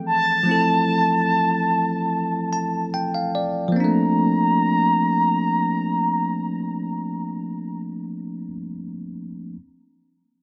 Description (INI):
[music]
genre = R&B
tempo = 73 BPM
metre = 4/4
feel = straight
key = Bb lydian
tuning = A4 = 441 Hz
[part]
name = bell-like tine electric piano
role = accompaniment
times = 0.0-9.6 s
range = E3 to A5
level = -25 LUFS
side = equal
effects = none
[part]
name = mellow horn-like synth lead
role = melody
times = 0.1-7.8 s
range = A5 to Bb5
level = -24 LUFS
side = equal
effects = chorus, tape echo
[sound]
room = light reverb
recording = none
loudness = -21 LUFS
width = mono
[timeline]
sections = 0.0-3.8 A section; 3.8-7.0 B section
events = tine electric piano fill 2.1-3.8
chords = 0.0 Fmaj9; 3.8 Bbmaj9